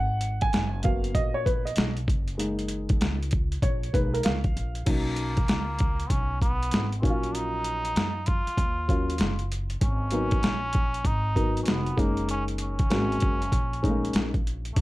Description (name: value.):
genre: hip hop, jazz-hop.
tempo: 97 BPM.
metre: 4/4.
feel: swing 64% on 16ths.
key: unclear.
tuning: A4 = 441 Hz.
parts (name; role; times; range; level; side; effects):
dark upright piano; accompaniment; 0.0-14.3 s; F#3 to Ab5; -30 LUFS; equal; plate reverb.
upright bass; bass; 0.0-14.8 s; F1 to Gb2; -31 LUFS; equal; none.
boom bap sampler-style drum kit; drums; 0.2-14.8 s; crash cymbal, hi-hat, kick drum, snare drum; -26 LUFS; equal; overdrive.
trombone with metal mute; melody; 4.9-14.8 s; A3 to F4; -32 LUFS; equal; plate reverb.
room: light reverb.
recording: dark, warm production.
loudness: -24 LUFS.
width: side -18 dB against mid.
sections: 0.0-4.9 A section; 4.9-14.8 B section.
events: upright piano solo 0.0-4.9.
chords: 0.0 Abm9; 4.9 Bmaj9; 7.0 Ebm9/Bb; 9.8 Abm9; 12.0 Gb6.